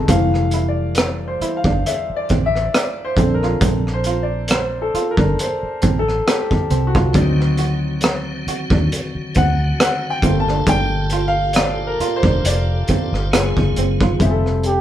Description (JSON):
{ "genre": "R&B, neo-soul", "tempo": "68 BPM", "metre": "4/4", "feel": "swing 55% on 16ths", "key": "F major", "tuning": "A4 = 440 Hz", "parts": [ { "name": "electric guitar through a small old amp", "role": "second line", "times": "0.0-14.2 s", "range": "C4 to F#4", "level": "-26 LUFS", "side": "right 8 dB", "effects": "none" }, { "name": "warm concert grand piano", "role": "accompaniment", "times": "0.0-14.8 s", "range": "E3 to A5", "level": "-22 LUFS", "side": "left 2 dB", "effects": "none" }, { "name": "vintage muted fingered electric bass", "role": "bass", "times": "0.1-14.8 s", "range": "E1 to Eb2", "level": "-20 LUFS", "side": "equal", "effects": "none" }, { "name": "crunchy breakbeat drum kit", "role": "drums", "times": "0.1-14.8 s", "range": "hi-hat, kick drum, rim click", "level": "-19 LUFS", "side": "equal", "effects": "none" }, { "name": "tonewheel organ", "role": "sustained chords", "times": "7.1-14.2 s", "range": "Bb2 to A4", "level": "-28 LUFS", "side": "equal", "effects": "fast rotary speaker, chorus vibrato" }, { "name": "breathy flugelhorn", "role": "melody", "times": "14.7-14.8 s", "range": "G4", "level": "-17 LUFS", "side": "right 1 dB", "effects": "none" } ], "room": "moderate studio reverb, RT60 0.8 s", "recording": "band playing live in one room", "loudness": "-16 LUFS", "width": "side -11 dB against mid", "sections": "0.1-14.2 A section", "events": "grand piano solo 0.1-14.2", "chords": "0.1 Fmaj9; 3.2 Bbmaj9; 7.1 D7b9; 10.2 Gm9; 13.3 Gbmaj9; 14.2 Fmaj9" }